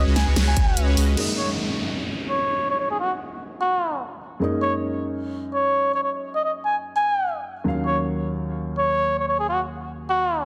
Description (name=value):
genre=future bass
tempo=148 BPM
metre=4/4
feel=swing 56% on 16ths, half-time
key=F# major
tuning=A4 = 439 Hz
part: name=trumpet with cup mute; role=melody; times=0.0-10.4 s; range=F#4 to G#5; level=-25 LUFS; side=equal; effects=sidechain pumping, digital delay
part: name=soft supersaw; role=riff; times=0.0-1.2 s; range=G#3 to D#5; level=-31 LUFS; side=equal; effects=sidechain pumping, low-pass filter, dub echo
part: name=saturated sub bass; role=bass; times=0.0-1.2 s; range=C#2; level=-22 LUFS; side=equal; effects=tube saturation, sidechain pumping
part: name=dubstep drum kit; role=drums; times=0.2-1.3 s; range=crash cymbal, hi-hat, snare drum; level=-30 LUFS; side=equal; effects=none
part: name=electronic kick drum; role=drums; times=0.6-0.7 s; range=none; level=-23 LUFS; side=equal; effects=none
part: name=dark baby grand piano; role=accompaniment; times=1.2-10.4 s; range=D#2 to E#5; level=-30 LUFS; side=equal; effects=sidechain pumping, dub echo
part: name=downlifter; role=sound effects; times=1.2-4.4 s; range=none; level=-33 LUFS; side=equal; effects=none
room=moderate digital room reverb, RT60 1.3 s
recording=dense, heavily limited modern master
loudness=-23 LUFS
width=mono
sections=0.0-1.2 A section; 1.2-10.4 B section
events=drop 0.0-1.2; kick drops out 0.8-1.2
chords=0.0 C#7sus4; 1.2 F#69; 7.7 D#m9